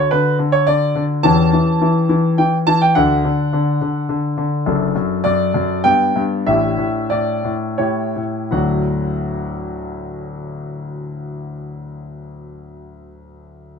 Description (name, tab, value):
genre	classical-period piano sonatina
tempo	79-107 BPM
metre	3/4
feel	rubato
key	D major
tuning	A4 = 439 Hz
part	clear concert grand piano	solo	0.0-13.8 s	F#1 to A5	-16 LUFS	left 1 dB	none
room	light reverb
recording	minimal, uncompressed stereo recording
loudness	-15 LUFS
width	side -6 dB against mid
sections	0.0-8.5 A section; 8.5-12.8 B section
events	slowing down 3.8-8.5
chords	0.0 D; 1.2 C#dim/E; 3.0 D; 4.7 D/F#; 5.8 G; 6.5 A7sus4; 7.8 A7; 8.5 D